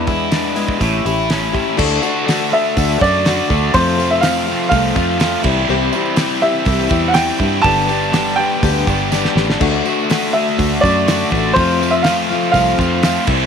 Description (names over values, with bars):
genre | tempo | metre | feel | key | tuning
folk rock and heartland rock | 123 BPM | 4/4 | straight | unclear | A4 = 440 Hz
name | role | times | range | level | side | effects
picked plugged-in swing-style acoustic guitar | accompaniment | 0.0-13.5 s | F2 to A4 | -20 LUFS | left 11 dB | none
biting overdriven guitar | riff | 0.0-13.5 s | E2 to G4 | -19 LUFS | right 2 dB | none
fingered electric bass | bass | 0.0-13.5 s | G1 to G2 | -20 LUFS | right 2 dB | none
damped 70s drum kit | drums | 0.1-13.4 s | crash cymbal, hi-hat, kick drum, snare drum | -21 LUFS | right 1 dB | none
tambourine | percussion | 1.9-13.4 s | none | -35 LUFS | right 18 dB | none
clear concert grand piano | melody | 2.5-13.2 s | C5 to A5 | -17 LUFS | right 2 dB | none
room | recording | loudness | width
light reverb, small room reverb | 1960s-style stereo with parts hard left and right | -13 LUFS | side -7 dB against mid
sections
0.0-1.8 A section; 1.8-13.5 B section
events
drum fill 9.1-9.6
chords
0.0 E7; 0.8 A7; 1.8 D; 3.8 F; 5.5 C; 7.7 G; 9.6 D; 11.6 F